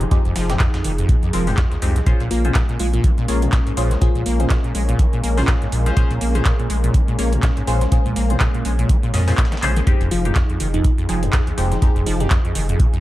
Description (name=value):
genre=acid house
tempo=123 BPM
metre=4/4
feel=swing 57% on 16ths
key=unclear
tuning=A4 = 440 Hz
part: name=lush unison pad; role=sustained chords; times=0.0-13.0 s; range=F3 to Ab4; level=-28 LUFS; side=equal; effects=chorus, phaser, sidechain pumping
part: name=acid bass, saw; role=riff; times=0.0-13.0 s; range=Eb2 to Bb3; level=-23 LUFS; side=equal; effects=overdrive, ensemble chorus, sidechain pumping
part: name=band-passed chord stab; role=stabs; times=0.0-12.3 s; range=Ab3 to Eb5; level=-27 LUFS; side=left 2 dB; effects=phaser, lush chorus, tape echo
part: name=saturated sub bass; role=bass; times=0.0-12.7 s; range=F1 to F2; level=-20 LUFS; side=equal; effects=sidechain pumping
part: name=booming analog drum machine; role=drums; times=0.0-13.0 s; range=handclaps, hi-hat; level=-28 LUFS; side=right 1 dB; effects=none
part: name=dusty soul sampler-style drum kit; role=drums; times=0.1-12.9 s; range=hi-hat, snare drum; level=-36 LUFS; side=right 1 dB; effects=overdrive, high-pass filter on hats, high-pass filter on snare
part: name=electronic kick drum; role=drums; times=0.1-12.9 s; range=none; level=-18 LUFS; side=equal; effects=none
part: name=bell-like FM electric piano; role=melody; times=2.3-4.7, 10.1-12.3 s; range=Eb4 to F4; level=-30 LUFS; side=equal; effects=chorus, tape echo
room=light reverb, digital ambience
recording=dark, warm production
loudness=-16 LUFS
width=side -16 dB against mid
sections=0.0-13.0 A section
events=drum fill 9.6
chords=0.0 Fm7; 2.1 Bbm7; 9.9 Fm7